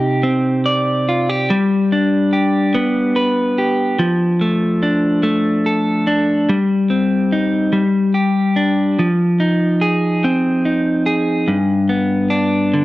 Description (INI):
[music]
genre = pop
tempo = 48 BPM (dotted quarters)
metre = 6/8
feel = straight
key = unclear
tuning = A4 = 439 Hz
[part]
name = clean electric guitar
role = solo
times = 0.0-12.8 s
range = G2 to D5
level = -14 LUFS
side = equal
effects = spring reverb
[sound]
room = digital ambience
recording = dry, close 1970s-style studio recording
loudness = -14 LUFS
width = side -17 dB against mid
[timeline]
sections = 0.0-9.0 A section; 9.0-12.8 B section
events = none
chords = 0.0 Cmadd9; 1.5 G; 4.0 Dm/F; 6.5 Cm/G; 7.7 G5; 9.0 Fm7; 11.5 G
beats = 0.23 | 1.49 2.74 | 3.99 5.24 | 6.49 7.74 | 8.99 10.24 | 11.49 12.74